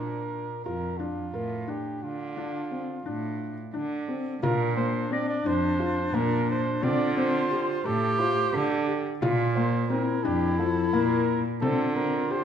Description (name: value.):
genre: contemporary instrumental, chamber music in an uneven meter.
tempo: 175 BPM (eighths).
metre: 7/8.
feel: straight.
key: unclear.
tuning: A4 = 444 Hz.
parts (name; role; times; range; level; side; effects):
warm flugelhorn; melody; 0.0-12.4 s; F4 to D5; -32 LUFS; right 2 dB; none.
felt-muted upright piano; arpeggios; 0.0-12.4 s; F3 to Bb4; -30 LUFS; left 4 dB; none.
rich cello; bass; 0.0-12.4 s; F2 to D3; -30 LUFS; right 4 dB; none.
warm clarinet; second line; 4.4-12.4 s; D4 to G4; -29 LUFS; left 2 dB; none.
frame drum; percussion; 4.4-12.4 s; none; -35 LUFS; left 2 dB; none.
small celesta; texture; 5.1-7.1 s; Bb6; -38 LUFS; left 4 dB; none.
room: moderate recital hall reverb, RT60 1.4 s.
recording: none.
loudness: -24 LUFS.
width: side -8 dB against mid.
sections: 0.0-4.4 A section; 4.4-12.4 B section.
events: none.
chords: 0.0 Bb; 2.0 Dm7; 4.4 Bb; 6.8 Dm7; 9.2 Bb5; 11.6 Dm7.